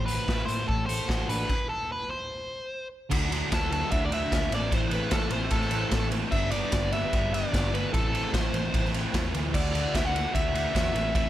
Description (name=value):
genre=indie rock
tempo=149 BPM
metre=4/4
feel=straight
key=D mixolydian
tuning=A4 = 440 Hz
part: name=biting overdriven guitar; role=melody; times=0.0-11.3 s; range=A4 to F#5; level=-31 LUFS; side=equal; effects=none
part: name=sludgy distorted guitar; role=riff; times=0.0-11.3 s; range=G2 to A4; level=-31 LUFS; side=equal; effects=overdrive
part: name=picked electric bass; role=bass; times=0.0-11.3 s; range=G1 to A2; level=-32 LUFS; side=equal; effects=none
part: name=raw garage drum kit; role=drums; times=0.1-11.2 s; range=crash cymbal, hi-hat, kick drum, ride cymbal, snare drum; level=-29 LUFS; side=equal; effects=none
part: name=sweeping resonant pad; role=sustained chords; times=3.1-11.3 s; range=F#3 to D5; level=-41 LUFS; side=right 1 dB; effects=none
room=little or no reverb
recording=none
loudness=-25 LUFS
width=side -13 dB against mid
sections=0.0-3.1 A section; 3.1-11.3 B section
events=stop 1.5-3.1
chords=0.0 Amadd9; 0.7 D/A; 1.5 N.C.; 3.1 Dadd9; 4.5 Am; 6.3 G; 7.9 Am; 9.5 Dadd9